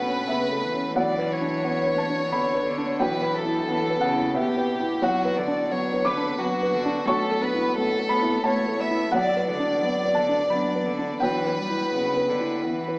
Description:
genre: neoclassical piano and strings.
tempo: 88 BPM.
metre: 3/4.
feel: rubato.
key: B minor.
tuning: A4 = 440 Hz.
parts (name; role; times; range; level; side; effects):
warm chamber violin section; melody; 0.0-13.0 s; F#4 to E5; -26 LUFS; equal; none.
clear cello; second line; 0.0-13.0 s; B2 to B3; -31 LUFS; equal; none.
felt-muted upright piano; accompaniment; 0.0-13.0 s; B1 to D6; -25 LUFS; equal; none.
glassy FM pad; sustained chords; 0.0-13.0 s; A3 to B4; -33 LUFS; equal; ensemble chorus, built-in reverb.
room: moderate concert hall reverb, RT60 1.9 s.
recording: small speaker sound.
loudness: -21 LUFS.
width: side -26 dB against mid.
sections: 0.0-13.0 A section.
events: none.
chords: 0.0 Aadd9/B; 1.0 Bm; 3.0 Em/B; 5.0 Bm; 7.1 Aadd9/B; 9.1 Bm; 11.2 Em/B.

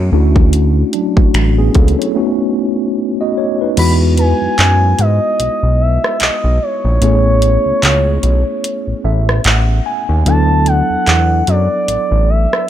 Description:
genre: contemporary R&B.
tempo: 74 BPM.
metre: 4/4.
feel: swing 58% on 16ths.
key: E major from 3.8 s.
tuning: A4 = 440 Hz.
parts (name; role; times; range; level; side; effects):
mellow tine electric piano; accompaniment; 0.0-12.7 s; F#3 to G#5; -17 LUFS; equal; medium stereo tremolo.
fat analog bass; bass; 0.0-12.5 s; A1 to G#2; -13 LUFS; equal; none.
trap drum kit; drums; 0.4-12.7 s; crash cymbal, finger snaps, handclaps, hi-hat, kick drum, rim click; -15 LUFS; equal; none.
gliding portamento lead; melody; 3.8-12.7 s; C#5 to B5; -16 LUFS; right 1 dB; chorus.
worn celesta; texture; 4.2-8.7 s; B4 to C#5; -26 LUFS; right 1 dB; none.
room: digital ambience.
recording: none.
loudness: -11 LUFS.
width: side -11 dB against mid.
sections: 0.0-3.8 A section; 3.8-12.7 B section.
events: break 2.2-3.8; kick muted 3.8-12.7; tine electric piano fill 8.6-10.3.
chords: 0.1 Dmaj9; 2.2 B7; 3.8 Emaj7; 7.0 Amaj9; 10.3 D69.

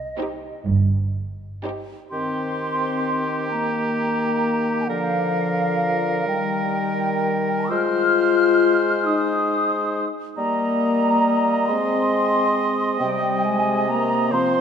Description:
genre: classical, slow romantic movement for symphony orchestra.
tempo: 40-47 BPM (dotted quarters).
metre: 6/8.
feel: rubato.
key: Eb major.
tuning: A4 = 440 Hz.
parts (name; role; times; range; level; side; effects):
large flute ensemble; second line; 0.0-14.6 s; Eb5 to F6; -24 LUFS; equal; none.
warm studio cello section; bass; 0.0-1.9 s; G2 to C3; -25 LUFS; right 3 dB; none.
warm studio double bass section; bass; 0.0-1.9 s; G1 to C2; -23 LUFS; right 3 dB; none.
warm studio violin section; melody; 0.2-2.0 s; C5; -38 LUFS; left 3 dB; none.
warm studio violin section; second line; 0.2-2.0 s; G4; -36 LUFS; right 1 dB; none.
warm studio viola section; accompaniment; 0.2-2.0 s; Eb4; -35 LUFS; right 4 dB; none.
clear oboe; second line; 2.1-14.6 s; G4 to Eb5; -27 LUFS; right 1 dB; none.
mellow bassoon; accompaniment; 2.1-14.6 s; C3 to Ab3; -26 LUFS; right 1 dB; none.
mellow French horn section; sustained chords; 2.1-14.6 s; F3 to F4; -23 LUFS; left 4 dB; none.
room: wet concert hall reverb, RT60 2.2 s.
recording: dark, warm production.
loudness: -19 LUFS.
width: side -7 dB against mid.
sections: 0.0-2.1 A section; 2.1-14.6 B section.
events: none.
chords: 0.0 Cm; 2.1 Eb; 4.9 Bb/D; 6.3 Eb; 7.7 Ab; 10.4 Eb/G; 11.7 Ab; 13.0 Cm.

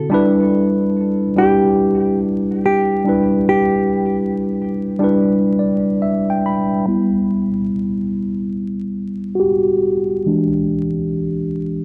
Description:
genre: hip hop.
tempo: 71 BPM.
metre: 4/4.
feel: swing 63% on 16ths.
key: G major.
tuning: A4 = 440 Hz.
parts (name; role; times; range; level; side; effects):
hollow-body jazz guitar; melody; 0.0-6.0 s; G4; -22 LUFS; equal; low-pass filter, analog delay.
tine electric piano; accompaniment; 0.0-11.8 s; D3 to B5; -18 LUFS; equal; cassette tape, low-pass filter.
room: moderate plate reverb, RT60 2.8 s.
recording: vinyl crackle.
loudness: -17 LUFS.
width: mono.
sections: 0.0-6.9 A section; 6.9-11.8 B section.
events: tine electric piano solo 6.9-11.8; filter sweep on tine electric piano 6.9-11.8.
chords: 0.1 G6; 10.2 E7#9.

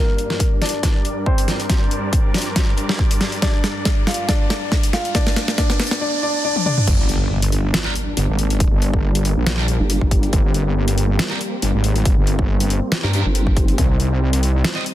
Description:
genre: heavy wobble dubstep.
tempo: 139 BPM.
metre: 4/4.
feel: swing 54% on 16ths, half-time.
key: G minor.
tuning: A4 = 440 Hz.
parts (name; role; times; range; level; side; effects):
warm grand piano; melody; 0.0-6.9 s; Bb3 to F5; -25 LUFS; left 1 dB; low-pass filter, tape echo.
supersaw chords; sustained chords; 0.0-14.9 s; G2 to D5; -27 LUFS; equal; sidechain pumping, low-pass filter.
riser and impact; sound effects; 2.3-8.6 s; none; -28 LUFS; equal; none.
dubstep drum kit; drums; 0.2-14.9 s; crash cymbal, hi-hat, snare drum, toms; -22 LUFS; equal; overdrive.
electronic kick drum; drums; 0.4-13.9 s; none; -18 LUFS; equal; none.
wobble bass; bass; 6.9-14.6 s; G1 to C2; -18 LUFS; equal; chorus, overdrive.
distorted electric guitar; stabs; 7.9-14.8 s; D4 to Eb5; -30 LUFS; right 2 dB; overdrive, tape echo.
vowel-sweep wobble bass; bass; 9.8-10.3, 13.0-13.8 s; G1 to G2; -19 LUFS; equal; chorus, overdrive.
room: little or no reverb.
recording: dense, heavily limited modern master.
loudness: -16 LUFS.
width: side -13 dB against mid.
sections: 0.0-6.9 A section; 6.9-14.9 B section.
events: build-up 0.0-6.9; drum fill 0.0-6.0, 6.6-6.9; filter sweep on supersaw synth 0.0-6.9; filter sweep on grand piano 0.0-6.9; riser 2.3-6.9; drop 6.9-14.9; impact 6.9-8.6.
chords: 0.0 Gm; 13.8 Cm.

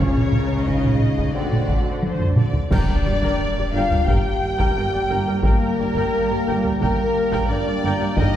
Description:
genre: cinematic, epic orchestral film score.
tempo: 88 BPM.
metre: 4/4.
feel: straight.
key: G minor.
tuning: A4 = 436 Hz.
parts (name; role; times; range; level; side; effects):
warm symphonic violin section; melody; 0.0-8.4 s; Bb4 to G5; -30 LUFS; left 3 dB; none.
warm symphonic violin section; second line; 0.0-8.4 s; Bb4 to G5; -28 LUFS; equal; none.
warm symphonic viola section; accompaniment; 0.0-8.3 s; F#4 to G5; -30 LUFS; right 1 dB; none.
bright trombone section; sustained chords; 0.0-8.4 s; F3 to Db4; -31 LUFS; right 3 dB; none.
dark French horn section; sustained chords; 0.0-8.4 s; Bb3 to G4; -26 LUFS; left 4 dB; none.
dark symphonic double bass section; bass; 0.0-8.2 s; G1 to D2; -29 LUFS; right 1 dB; none.
mellow tuba; bass; 0.0-8.2 s; G1 to D2; -31 LUFS; right 2 dB; none.
rich symphonic cello section; bass; 0.0-8.2 s; G2 to D3; -28 LUFS; right 2 dB; none.
taiko ensemble; drums; 0.2-8.4 s; none; -21 LUFS; equal; none.
small flute group; second line; 2.7-8.4 s; Bb4 to G5; -30 LUFS; left 3 dB; none.
clash cymbals and concert bass drum; percussion; 2.7-4.0 s; none; -27 LUFS; equal; none.
room: wet concert hall reverb, RT60 2.3 s.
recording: heard from further back in the room.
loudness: -18 LUFS.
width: side -11 dB against mid.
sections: 0.0-2.7 A section; 2.7-8.4 B section.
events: drum fill 2.0-2.7; band accent 2.7-3.4.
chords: 0.0 Db; 1.4 D7; 2.7 Gm.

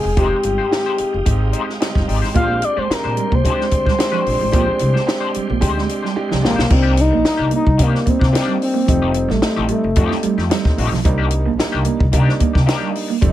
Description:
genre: funk.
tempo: 110 BPM.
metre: 4/4.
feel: straight.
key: C minor.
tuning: A4 = 441 Hz.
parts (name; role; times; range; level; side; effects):
expressive synth lead; melody; 0.0-10.7 s; A3 to F5; -19 LUFS; left 2 dB; chorus.
twangy electric guitar; accompaniment; 0.0-13.2 s; Eb3 to D5; -26 LUFS; left 8 dB; wah.
tonewheel organ; sustained chords; 0.0-6.7 s; Ab3 to Eb6; -30 LUFS; right 1 dB; chorus vibrato, stopped rotary speaker.
warm upright piano; stabs; 0.0-13.3 s; G3 to G4; -24 LUFS; right 3 dB; none.
upright bass; bass; 0.0-13.3 s; E1 to C3; -19 LUFS; equal; none.
compact cocktail drum kit; drums; 0.2-13.3 s; crash cymbal, hi-hat, kick drum, snare drum; -19 LUFS; equal; none.
electric guitar at the edge of break-up; riff; 2.3-13.3 s; F3 to C4; -24 LUFS; right 10 dB; spring reverb.
room: little or no reverb.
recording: none.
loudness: -14 LUFS.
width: side -13 dB against mid.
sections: 0.0-6.7 A section; 6.7-13.3 B section.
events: drum fill 6.2-6.7.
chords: 0.0 Fm9; 2.4 Bb13; 6.7 Cm9; 8.9 F9; 11.0 Cm9.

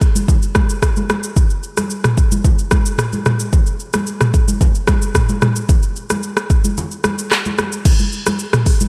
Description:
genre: afrobeats.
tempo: 111 BPM.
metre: 4/4.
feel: straight.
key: none.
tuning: none.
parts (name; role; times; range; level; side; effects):
afro-pop drum kit; drums; 0.0-8.9 s; crash cymbal, handclaps, hi-hat, kick drum, rim click, shaker, toms; -16 LUFS; equal; none.
congas; percussion; 0.2-8.9 s; none; -26 LUFS; equal; none.
room: light reverb.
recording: none.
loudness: -16 LUFS.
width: mono.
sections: 0.0-7.9 A section; 7.9-8.9 B section.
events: break 6.8-7.9.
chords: none.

